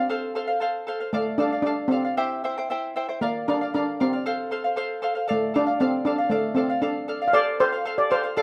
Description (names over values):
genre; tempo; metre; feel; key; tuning
andean folk, Andean ensemble; 116 BPM; 2/4; straight; unclear; A4 = 440 Hz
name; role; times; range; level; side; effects
steel pan; melody; 0.0-8.4 s; A3 to F5; -26 LUFS; equal; none
charango; accompaniment; 0.0-8.4 s; E4 to G5; -29 LUFS; equal; none
room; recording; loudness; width
wet studio reverb, RT60 0.6 s; rough home demo mix; -25 LUFS; mono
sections
0.0-7.3 A section; 7.3-8.4 B section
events
none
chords
0.1 F; 1.1 Dm; 2.2 C; 3.2 Bb; 4.3 F; 5.3 Dm; 7.3 F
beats
| 0.10 0.62 | 1.14 1.66 | 2.18 2.70 | 3.22 3.74 | 4.25 4.77 | 5.29 5.80 | 6.32 6.83 | 7.34 7.86 | 8.37